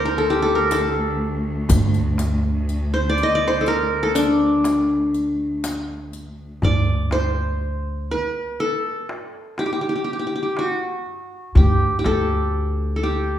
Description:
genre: Turkish makam ensemble.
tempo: 122 BPM (eighths).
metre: 10/8.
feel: straight.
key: D makam hicaz from 6.6 s.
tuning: A4 = 438 Hz.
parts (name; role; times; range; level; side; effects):
qanun; melody; 0.0-13.4 s; D4 to Eb5; -21 LUFS; equal; none.
rich cello; drone; 0.0-6.7 s; D2; -27 LUFS; equal; none.
darbuka; percussion; 0.2-13.2 s; none; -24 LUFS; right 1 dB; none.
riq; percussion; 0.7-6.3 s; none; -32 LUFS; left 3 dB; none.
upright bass; bass; 1.7-13.4 s; D2; -20 LUFS; equal; none.
room: wet recital hall reverb, RT60 1.4 s.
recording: recorded in a church or concert hall.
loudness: -18 LUFS.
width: side -11 dB against mid.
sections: 0.0-6.6 A section; 6.6-13.4 B section.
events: none.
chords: none.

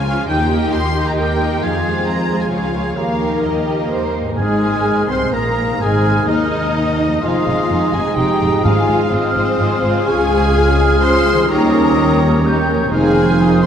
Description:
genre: classical.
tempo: 127 BPM.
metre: 3/4.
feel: rubato.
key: Ab major.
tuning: A4 = 440 Hz.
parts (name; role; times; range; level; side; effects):
warm symphonic violin section; melody; 0.0-13.7 s; C5 to C6; -24 LUFS; left 3 dB; none.
flute section; second line; 0.0-13.7 s; Ab5 to Ab6; -24 LUFS; equal; none.
warm symphonic violin section; second line; 0.0-13.6 s; Ab3 to F5; -24 LUFS; right 2 dB; none.
rich symphonic viola section; accompaniment; 0.0-13.6 s; F3 to C5; -22 LUFS; equal; none.
concert harp; arpeggios; 0.0-13.7 s; F2 to Eb6; -23 LUFS; equal; none.
dark symphonic cello section; bass; 0.0-13.7 s; Db2 to Bb4; -22 LUFS; equal; none.
warm symphonic double bass section; bass; 0.0-13.7 s; F1 to F2; -21 LUFS; equal; none.
warm clarinet; second line; 0.3-13.7 s; Eb4 to C5; -24 LUFS; left 2 dB; none.
clear oboe; second line; 4.4-13.7 s; C5 to C6; -25 LUFS; right 4 dB; none.
mellow French horn section; sustained chords; 4.4-13.7 s; Eb3 to F4; -22 LUFS; equal; none.
timpani; percussion; 4.4-5.1, 8.6-9.3 s; Ab2; -24 LUFS; right 1 dB; none.
room: wet cathedral reverb, RT60 5.0 s.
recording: in a vast, echoing space.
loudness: -13 LUFS.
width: side -8 dB against mid.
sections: 0.0-4.4 A section; 4.4-13.7 B section.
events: none.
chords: 0.3 Eb; 1.6 Fm; 2.5 Db; 3.0 Eb; 4.4 Ab; 7.2 Fm7; 8.6 Fm/Ab; 10.1 Db; 11.5 Eb7; 12.9 Fm7.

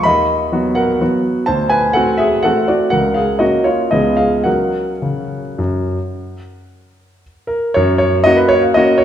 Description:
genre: classical, piano waltz.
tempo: 106-132 BPM.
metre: 3/4.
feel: rubato.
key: F# major.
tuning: A4 = 440 Hz.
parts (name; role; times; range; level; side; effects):
warm baby grand piano; solo; 0.0-9.0 s; C#2 to B5; -13 LUFS; equal; none.
room: wet recital hall reverb, RT60 1.7 s.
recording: recorded in a church or concert hall.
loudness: -13 LUFS.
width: side -10 dB against mid.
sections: 0.0-7.8 A section; 7.8-9.0 A section.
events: none.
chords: 0.1 B/D#; 1.5 D7; 2.9 F#/C#; 3.9 C#9; 4.5 F#.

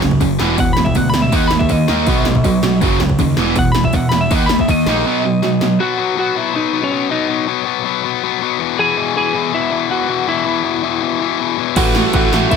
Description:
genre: punk rock.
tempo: 161 BPM.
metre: 4/4.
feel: straight.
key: unclear.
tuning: A4 = 441 Hz.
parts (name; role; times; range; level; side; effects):
biting overdriven guitar; riff; 0.0-5.8, 11.8-12.6 s; E2 to D#4; -17 LUFS; right 15 dB; none.
tight distorted guitar; riff; 0.0-12.6 s; E2 to D#4; -18 LUFS; left 13 dB; distortion.
growling picked electric bass; bass; 0.0-5.0, 11.8-12.6 s; E1 to E2; -20 LUFS; right 1 dB; overdrive.
80s electronic pad drums; drums; 0.0-5.7, 11.8-12.6 s; crash cymbal, kick drum, ride cymbal, snare drum; -19 LUFS; equal; none.
lightly driven lead guitar; melody; 0.6-12.6 s; C#4 to B5; -19 LUFS; left 1 dB; none.
room: light reverb.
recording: none.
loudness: -13 LUFS.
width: side -6 dB against mid.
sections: 0.0-5.8 A section; 5.8-12.6 B section.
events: lead electric guitar solo 0.0-5.8; drum fill 5.4-5.8.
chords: 0.4 E5; 1.3 D#5; 2.1 B; 2.8 F#5; 3.4 E5; 4.3 D#5; 5.1 B; 8.6 E; 11.8 A5.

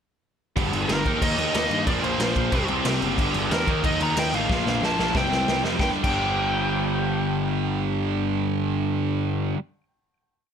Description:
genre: punk rock.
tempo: 184 BPM.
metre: 4/4.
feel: straight.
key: unclear.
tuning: A4 = 440 Hz.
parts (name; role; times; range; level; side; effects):
crunchy overdriven guitar; riff; 0.6-9.6 s; G2 to Eb4; -29 LUFS; left 1 dB; none.
sludgy distorted guitar; riff; 0.6-9.6 s; G2 to Eb4; -30 LUFS; left 11 dB; overdrive.
tight distorted guitar; riff; 0.6-9.6 s; G2 to Eb4; -28 LUFS; right 13 dB; distortion.
fuzz picked electric bass; bass; 0.6-9.5 s; F#1 to G2; -29 LUFS; equal; overdrive.
raw garage drum kit; drums; 0.6-6.1 s; crash cymbal, kick drum, snare drum; -26 LUFS; equal; none.
bluesy overdriven lead guitar; melody; 0.9-9.2 s; Bb4 to Bb5; -28 LUFS; left 1 dB; distortion, tape echo.
room: little or no reverb.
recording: none.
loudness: -21 LUFS.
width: side -7 dB against mid.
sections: 0.6-5.8 riff; 5.8-8.4 final chord.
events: drum fill 4.5-5.8.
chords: 0.6 G5; 1.1 Eb; 1.9 Bb5; 2.5 C5; 3.2 G5; 3.7 Eb5; 4.5 Bb5; 5.1 C5; 5.8 G5.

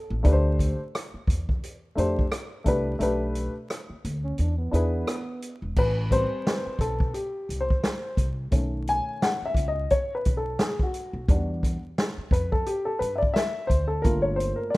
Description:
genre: hip hop, jazz-hop.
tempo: 87 BPM.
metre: 4/4.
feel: swing 57% on 16ths.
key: A minor.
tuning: A4 = 440 Hz.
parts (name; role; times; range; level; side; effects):
upright bass; bass; 0.1-14.5 s; E1 to G2; -27 LUFS; equal; none.
dark upright piano; accompaniment; 0.2-14.8 s; D#3 to G#5; -27 LUFS; left 1 dB; none.
vintage drum kit; drums; 0.2-14.8 s; crash cymbal, hi-hat, kick drum, rim click, snare drum; -26 LUFS; equal; none.
dark trombone; second line; 4.2-5.6 s; B3 to D4; -34 LUFS; right 2 dB; none.
room: small room reverb.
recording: rough home demo mix, vinyl crackle.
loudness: -23 LUFS.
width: side -20 dB against mid.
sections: 0.0-5.8 A section; 5.8-14.8 B section.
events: break 3.0-5.8; upright piano solo 5.8-14.8.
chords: 0.3 D7(no3); 3.0 Bm7; 4.4 E7; 5.8 Am7; 8.5 B7; 11.3 Em7; 14.0 Gm7.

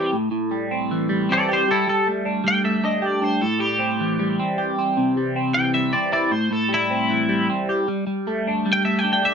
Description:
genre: rock.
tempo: 155 BPM.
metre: 4/4.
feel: straight.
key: A minor.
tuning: A4 = 440 Hz.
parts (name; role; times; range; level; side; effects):
twangy electric guitar; melody; 0.0-9.3 s; E4 to G5; -21 LUFS; equal; analog chorus, slapback echo.
crunchy overdriven guitar; riff; 0.0-9.3 s; A2 to G4; -21 LUFS; equal; phaser.
room: moderate studio reverb, RT60 0.8 s.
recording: dark, warm production.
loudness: -19 LUFS.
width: side -6 dB against mid.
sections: 0.0-9.3 A section.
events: clean electric guitar solo 0.0-9.3.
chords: 0.1 Am7; 1.7 Gsus2; 3.4 Am7; 5.0 C; 6.3 Am7; 7.9 Gsus2.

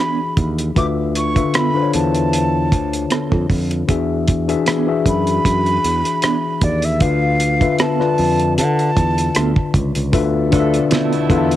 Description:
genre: lush 1970s-style soul.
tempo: 77 BPM.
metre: 4/4.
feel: swing 54% on 16ths.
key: unclear.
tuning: A4 = 440 Hz.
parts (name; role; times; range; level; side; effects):
breathy jazz flute; melody; 0.0-9.7 s; D5 to D6; -21 LUFS; right 2 dB; cassette tape.
tine electric piano; accompaniment; 0.0-11.6 s; D3 to A5; -19 LUFS; left 5 dB; cassette tape.
mellow electric guitar; riff; 0.0-11.1 s; B3 to A4; -23 LUFS; right 9 dB; tremolo, cassette tape.
fingered electric bass; bass; 0.4-11.6 s; C#2 to D3; -20 LUFS; right 1 dB; none.
cloth-damped thuddy drum kit; drums; 0.4-11.6 s; hi-hat, kick drum, rim click, snare drum; -19 LUFS; right 1 dB; cassette tape.
phased string machine; sustained chords; 10.1-11.6 s; B2 to A4; -29 LUFS; right 2 dB; ensemble chorus, phaser, cassette tape.
clear horn section; stabs; 10.5-11.6 s; B2 to A4; -24 LUFS; right 9 dB; cassette tape.
room: light reverb, small room ambience.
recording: home recording on cassette.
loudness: -14 LUFS.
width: side -13 dB against mid.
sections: 0.0-10.1 A section; 10.1-11.6 B section.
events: none.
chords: 0.0 E7; 0.8 Dm6; 3.9 E7; 7.0 Dm6.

